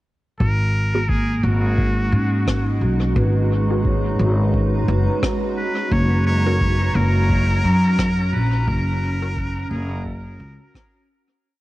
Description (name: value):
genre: ambient dub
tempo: 87 BPM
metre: 4/4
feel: swing 58% on 16ths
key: G# minor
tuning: A4 = 438 Hz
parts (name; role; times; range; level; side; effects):
- trumpet with straight mute; melody; 0.4-11.1 s; F#4 to C#5; -27 LUFS; equal; dub echo
- granular cloud pad; sustained chords; 2.1-11.4 s; G#3 to A#5; -27 LUFS; right 2 dB; built-in reverb, cassette tape
- upright bass; bass; 0.4-10.6 s; F#1 to G#2; -19 LUFS; equal; none
- electronic kick drum; drums; 0.4-10.9 s; none; -24 LUFS; equal; cassette tape
- filtered dub chord stab; stabs; 0.9-9.3 s; B3 to A#4; -30 LUFS; equal; none
- vibraphone with soft mallets; arpeggios; 1.1-11.6 s; A#3 to C#6; -29 LUFS; right 1 dB; cassette tape, analog delay
- rim click; drums; 2.5-10.9 s; none; -31 LUFS; left 1 dB; cassette tape, dub echo
- drifting glass-harmonics texture; texture; 6.6-11.4 s; A#5; -31 LUFS; left 2 dB; chorus, built-in reverb, cassette tape
room: small room ambience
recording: home recording on cassette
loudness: -17 LUFS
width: side -17 dB against mid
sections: 0.4-11.4 groove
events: fade-out 7.8-11.4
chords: 0.4 G#m7; 5.9 F#